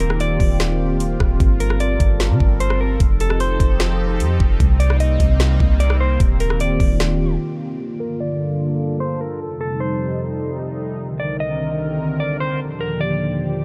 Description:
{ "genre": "hip hop, atmospheric cloud-rap", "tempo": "150 BPM", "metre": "4/4", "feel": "half-time", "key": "unclear", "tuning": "A4 = 439 Hz", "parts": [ { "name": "clean electric guitar", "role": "melody", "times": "0.0-13.6 s", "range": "A4 to Eb5", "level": "-28 LUFS", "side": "equal", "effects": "low-pass filter, digital delay" }, { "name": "sweeping resonant pad", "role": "sustained chords", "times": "0.0-13.6 s", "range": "C2 to Bb4", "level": "-25 LUFS", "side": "equal", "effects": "chorus, sidechain pumping, low-pass filter" }, { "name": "soft 808-style bass", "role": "bass", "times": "0.0-7.4 s", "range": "Eb1 to D3", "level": "-20 LUFS", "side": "equal", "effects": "none" }, { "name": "trap drum kit", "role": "drums", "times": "0.0-7.1 s", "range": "hi-hat, kick drum, rim click, snare drum", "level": "-21 LUFS", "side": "equal", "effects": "none" } ], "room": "digital ambience", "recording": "dark, warm production", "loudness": "-19 LUFS", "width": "mono", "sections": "0.0-7.8 A section; 7.8-13.6 B section", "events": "break 7.4-7.8; filter sweep 7.8-13.6", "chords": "0.0 Ebmaj9; 1.4 Gm9; 3.0 F9; 4.6 Cm7; 6.2 Ebmaj9; 7.8 Gm9; 9.4 F9; 11.0 Cm7; 12.6 Ebmaj9" }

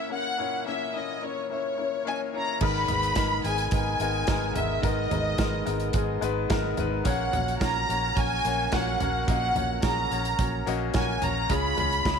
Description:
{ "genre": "piano-driven pop", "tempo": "108 BPM", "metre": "4/4", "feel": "straight", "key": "G# minor", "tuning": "A4 = 440 Hz", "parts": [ { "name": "rich studio violin section", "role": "melody", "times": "0.0-12.2 s", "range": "C#5 to B5", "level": "-28 LUFS", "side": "equal", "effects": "none" }, { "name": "clear baby grand piano", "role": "accompaniment", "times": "0.0-12.2 s", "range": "G#2 to E5", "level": "-30 LUFS", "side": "left 10 dB", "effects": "none" }, { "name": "direct-recorded clean electric guitar", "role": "riff", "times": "2.6-12.2 s", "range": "G#2 to A#4", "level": "-35 LUFS", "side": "right 16 dB", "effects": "none" }, { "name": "vintage muted fingered electric bass", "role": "bass", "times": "2.6-12.2 s", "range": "G#1 to C#2", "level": "-31 LUFS", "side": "right 2 dB", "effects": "none" }, { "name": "natural country drum kit", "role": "drums", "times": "2.6-12.2 s", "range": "crash cymbal, hi-hat, kick drum, snare drum, toms", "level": "-30 LUFS", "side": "right 2 dB", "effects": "none" } ], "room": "light reverb, small room ambience", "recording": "1960s-style stereo with parts hard left and right", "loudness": "-24 LUFS", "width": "side -6 dB against mid", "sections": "0.0-2.6 A section; 2.6-12.2 B section", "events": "none", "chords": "0.0 A#dim; 2.6 G#madd9; 7.1 F#/A#; 11.5 C#" }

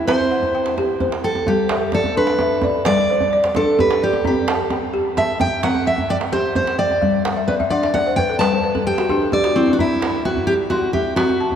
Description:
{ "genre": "west african traditional, West African string and xylophone music", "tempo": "87 BPM (dotted quarters)", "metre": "12/8", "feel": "straight", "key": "C lydian", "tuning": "A4 = 440 Hz", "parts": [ { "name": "picked steel-string acoustic guitar", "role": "melody", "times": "0.0-11.6 s", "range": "C4 to A5", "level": "-19 LUFS", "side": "right 1 dB", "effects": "none" }, { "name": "balafon", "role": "arpeggios", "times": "0.0-11.6 s", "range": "G3 to C6", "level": "-20 LUFS", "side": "left 2 dB", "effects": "none" }, { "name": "djembe", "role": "percussion", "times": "0.1-11.6 s", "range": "none", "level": "-25 LUFS", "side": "right 3 dB", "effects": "none" } ], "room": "wet cathedral reverb, RT60 6.4 s", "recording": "recorded in a church or concert hall", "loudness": "-16 LUFS", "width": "side -8 dB against mid", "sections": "0.0-9.8 A section; 9.8-11.6 B section", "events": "steel-string acoustic guitar solo 0.0-9.8; balafon fill 7.2-9.8", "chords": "0.0 C5; 1.5 G; 4.2 C5; 7.0 G5; 9.8 C" }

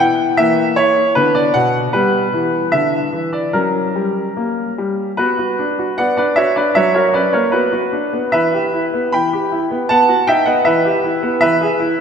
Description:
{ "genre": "classical-period piano sonatina", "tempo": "72-79 BPM", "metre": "2/4", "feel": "rubato", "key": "B minor", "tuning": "A4 = 440 Hz", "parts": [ { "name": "clear concert grand piano", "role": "solo", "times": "0.0-12.0 s", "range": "B2 to B5", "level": "-13 LUFS", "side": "equal", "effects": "none" } ], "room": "wet church reverb, RT60 2.9 s", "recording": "recorded in a church or concert hall", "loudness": "-13 LUFS", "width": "side -7 dB against mid", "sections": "0.0-5.2 A section; 5.2-12.0 B section", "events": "none", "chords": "0.4 A#dim/E; 1.2 Bm/D; 1.9 G; 3.5 F#; 5.2 Bm; 6.8 F#; 7.5 Bm; 8.3 Em; 9.9 B7; 10.7 Em; 11.4 E" }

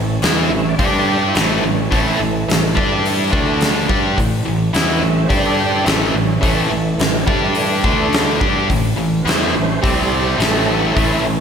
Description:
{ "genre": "blues rock power trio and southern rock", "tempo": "106 BPM", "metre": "4/4", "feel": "straight", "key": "A mixolydian", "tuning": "A4 = 436 Hz", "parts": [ { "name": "overdriven tonewheel organ", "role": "sustained chords", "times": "0.0-11.4 s", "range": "C3 to E5", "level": "-22 LUFS", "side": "right 3 dB", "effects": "slow rotary speaker, chorus vibrato" }, { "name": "distorted electric guitar", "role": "riff", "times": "0.0-11.4 s", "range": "A2 to G4", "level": "-17 LUFS", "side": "equal", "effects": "overdrive" }, { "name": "fuzz fingered electric bass", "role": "bass", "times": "0.0-11.4 s", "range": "A1 to G2", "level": "-22 LUFS", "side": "equal", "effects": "overdrive" }, { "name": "huge arena drum kit", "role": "drums", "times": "0.2-11.1 s", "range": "hi-hat, kick drum, snare drum", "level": "-19 LUFS", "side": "equal", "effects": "none" } ], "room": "moderate lush hall reverb, RT60 1.8 s, studio ambience", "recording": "big arena sound", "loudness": "-14 LUFS", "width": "side -7 dB against mid", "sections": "0.0-11.4 A section", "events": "tonewheel organ solo 0.0-11.4", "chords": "0.0 A; 0.8 G5; 1.4 A; 2.8 G5; 3.3 D5; 3.9 A; 5.3 G5; 5.9 A; 7.3 G5; 7.8 D5; 8.4 A; 9.8 C5; 10.4 A" }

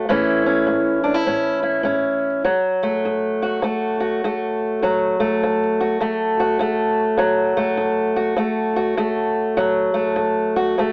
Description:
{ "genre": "blues", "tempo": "101 BPM", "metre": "4/4", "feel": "swing 64% on 8ths", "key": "D major", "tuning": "A4 = 440 Hz", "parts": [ { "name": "fingerpicked old ladder-braced acoustic guitar", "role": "solo", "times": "0.0-10.9 s", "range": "D2 to F#4", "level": "-20 LUFS", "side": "equal", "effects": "none" } ], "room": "light reverb", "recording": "vinyl crackle, AM radio sound", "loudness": "-20 LUFS", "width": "mono", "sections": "0.0-2.4 A section; 2.4-10.9 B section", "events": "none", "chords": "0.1 A; 2.4 D" }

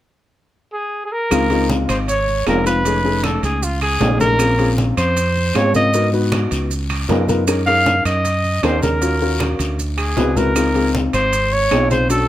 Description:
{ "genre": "Afro-Cuban jazz", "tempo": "156 BPM", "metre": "4/4", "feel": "straight", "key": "Db major", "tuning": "A4 = 440 Hz", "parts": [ { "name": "warm trumpet", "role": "melody", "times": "0.7-12.3 s", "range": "F4 to F5", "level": "-18 LUFS", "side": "equal", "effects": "none" }, { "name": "dark baby grand piano", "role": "accompaniment", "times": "1.3-12.2 s", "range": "Ab3 to Cb5", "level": "-20 LUFS", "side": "left 3 dB", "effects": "none" }, { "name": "fingered electric bass", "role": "bass", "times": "1.3-12.3 s", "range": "F1 to Ab2", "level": "-20 LUFS", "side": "right 1 dB", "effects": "none" }, { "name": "claves", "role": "percussion", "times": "1.3-11.9 s", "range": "none", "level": "-29 LUFS", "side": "right 5 dB", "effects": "none" }, { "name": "congas", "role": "percussion", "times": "1.3-12.3 s", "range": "none", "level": "-27 LUFS", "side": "equal", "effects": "none" }, { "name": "guiro", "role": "percussion", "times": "1.3-12.3 s", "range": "none", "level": "-32 LUFS", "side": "left 4 dB", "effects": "none" }, { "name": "maracas", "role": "percussion", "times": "1.3-12.3 s", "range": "none", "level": "-31 LUFS", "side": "right 7 dB", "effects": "none" }, { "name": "timbales", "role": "percussion", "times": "1.3-12.3 s", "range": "none", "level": "-27 LUFS", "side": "right 4 dB", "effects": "none" } ], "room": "moderate club reverb, RT60 0.8 s", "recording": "none", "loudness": "-15 LUFS", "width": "side -13 dB against mid", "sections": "0.0-1.3 A section; 1.3-12.3 B section", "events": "none", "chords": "0.0 N.C.; 1.3 Dbmaj9; 2.9 F7alt; 4.4 Bbm9; 5.9 Abm7; 6.7 Db13; 7.5 Gb6; 9.0 Ebm9; 9.8 D13; 10.6 Dbmaj9" }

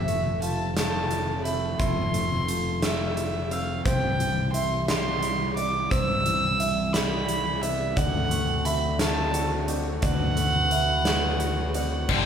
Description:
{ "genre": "post-rock", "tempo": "58 BPM (dotted quarters)", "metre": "6/8", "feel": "straight", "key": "unclear", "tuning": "A4 = 440 Hz", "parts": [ { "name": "warm violin", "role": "melody", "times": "0.0-12.3 s", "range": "E5 to E6", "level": "-28 LUFS", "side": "right 1 dB", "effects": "none" }, { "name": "chorused pulse-width pad", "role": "sustained chords", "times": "0.0-12.3 s", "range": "C3 to B4", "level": "-34 LUFS", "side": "right 1 dB", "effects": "none" }, { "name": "felt-muted upright piano", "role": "arpeggios", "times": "0.0-12.3 s", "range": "F4 to E6", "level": "-34 LUFS", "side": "right 4 dB", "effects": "none" }, { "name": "mellow electric guitar", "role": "arpeggios", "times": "0.0-12.3 s", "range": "C3 to F#4", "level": "-34 LUFS", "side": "left 2 dB", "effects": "none" }, { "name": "growling fingered electric bass", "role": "bass", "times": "0.0-12.3 s", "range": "F1 to D2", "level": "-30 LUFS", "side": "left 1 dB", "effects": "overdrive" }, { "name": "huge arena drum kit", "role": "drums", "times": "0.1-12.3 s", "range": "crash cymbal, hi-hat, kick drum, snare drum", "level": "-28 LUFS", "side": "equal", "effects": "none" }, { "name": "tight distorted guitar", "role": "riff", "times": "12.1-12.3 s", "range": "G2 to D3", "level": "-23 LUFS", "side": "left 9 dB", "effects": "distortion" } ], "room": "wet large studio reverb, RT60 1.4 s", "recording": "band playing live in one room", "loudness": "-23 LUFS", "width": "side -8 dB against mid", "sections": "0.0-12.1 A section", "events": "none", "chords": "0.0 Fmaj7; 3.9 C; 8.0 D7" }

